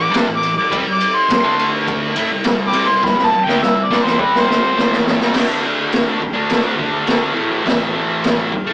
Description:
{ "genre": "garage rock duo or trio", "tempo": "104 BPM", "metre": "4/4", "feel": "straight", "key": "unclear", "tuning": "A4 = 442 Hz", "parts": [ { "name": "overdriven harmonica", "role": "melody", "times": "0.0-5.0 s", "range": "B4 to D6", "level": "-16 LUFS", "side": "equal", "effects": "none" }, { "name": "thick fuzz guitar", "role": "riff", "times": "0.0-8.7 s", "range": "A2 to E4", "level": "-19 LUFS", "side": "equal", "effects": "distortion" }, { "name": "raw garage drum kit", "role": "drums", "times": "0.1-8.7 s", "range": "crash cymbal, kick drum, ride cymbal, snare drum", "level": "-17 LUFS", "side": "equal", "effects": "none" } ], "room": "light reverb", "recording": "rough rehearsal-room recording, tube saturation, small speaker sound", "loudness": "-13 LUFS", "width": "side -23 dB against mid", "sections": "0.0-5.4 A section; 5.4-8.7 B section", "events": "harmonica solo 0.0-5.4; drum fill 3.0-5.4", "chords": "0.0 A5; 0.7 C5; 1.4 D5; 2.2 C5; 5.4 D5; 7.4 A5" }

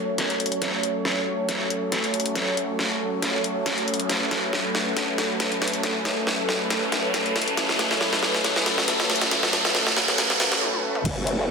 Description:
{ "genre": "heavy wobble dubstep", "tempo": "138 BPM", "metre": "4/4", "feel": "swing 54% on 16ths, half-time", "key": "F# minor", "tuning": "A4 = 444 Hz", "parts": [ { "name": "lush unison pad", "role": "sustained chords", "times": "0.0-11.5 s", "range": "C#3 to C#5", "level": "-26 LUFS", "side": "equal", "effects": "chorus, sidechain pumping" }, { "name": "riser", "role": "sound effects", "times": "0.0-10.6 s", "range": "none", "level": "-30 LUFS", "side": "right 1 dB", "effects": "none" }, { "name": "dubstep drum kit", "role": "drums", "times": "0.2-11.4 s", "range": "crash cymbal, hi-hat, snare drum, toms", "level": "-24 LUFS", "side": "equal", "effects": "high-pass filter on hats, high-pass filter on toms, high-pass filter on snare, high-pass filter on cymbals, high-pass filter on room" }, { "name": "growl bass", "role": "bass", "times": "11.1-11.5 s", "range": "F#1", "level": "-25 LUFS", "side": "equal", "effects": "chorus, overdrive" }, { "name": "electronic kick drum", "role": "drums", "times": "11.1 s", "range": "none", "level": "-32 LUFS", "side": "equal", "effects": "none" } ], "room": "wet digital room reverb, RT60 1.1 s", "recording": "dense, heavily limited modern master, high-pass filter", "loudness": "-21 LUFS", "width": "side -5 dB against mid", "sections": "0.0-11.1 A section", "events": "build-up 0.0-11.1; drum fill 0.0-10.6, 10.6-11.1; riser 0.0-10.6; filter sweep on analog synth pad 0.0-11.1; filter sweep 0.0-11.1; break 10.6-11.1", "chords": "0.0 F#m" }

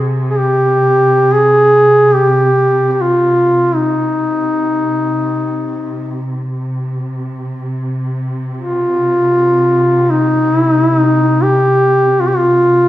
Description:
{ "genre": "caucasian folk, Caucasian lament", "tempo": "free time", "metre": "none", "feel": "none", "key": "C minor", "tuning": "A4 = 439 Hz", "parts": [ { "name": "mellow duduk", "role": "melody", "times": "0.0-12.9 s", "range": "Eb4 to Ab4", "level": "-11 LUFS", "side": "equal", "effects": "none" }, { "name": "dark chamber string section", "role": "drone", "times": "0.0-12.9 s", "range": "C3", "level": "-18 LUFS", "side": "equal", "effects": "none" } ], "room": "wet recital hall reverb, RT60 1.7 s", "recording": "recorded in a church or concert hall", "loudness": "-11 LUFS", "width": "side -14 dB against mid", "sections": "0.0-12.9 A section", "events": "none", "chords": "none" }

